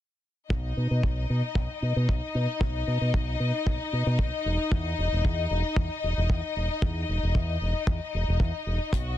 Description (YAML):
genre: nu-disco, nu disco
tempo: 114 BPM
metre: 4/4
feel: straight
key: B major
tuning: A4 = 440 Hz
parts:
  - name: rich studio string section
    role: sustained chords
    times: 0.5-9.2 s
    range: D#4 to D#5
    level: -31 LUFS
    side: left 5 dB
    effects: sidechain pumping
  - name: fingered electric bass with an envelope filter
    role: bass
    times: 0.5-9.1 s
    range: E1 to B2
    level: -27 LUFS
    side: equal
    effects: sidechain pumping
  - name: kick drum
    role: drums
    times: 0.5-9.0 s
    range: none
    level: -26 LUFS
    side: equal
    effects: none
  - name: hi-hat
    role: drums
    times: 8.9-9.0 s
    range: none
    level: -42 LUFS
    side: left 6 dB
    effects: none
room: small room ambience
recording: dense, heavily limited modern master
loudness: -25 LUFS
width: side -12 dB against mid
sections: 0.5-9.2 A section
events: filter sweep on fingered electric bass 0.5-9.2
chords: 0.5 B; 4.5 N.C.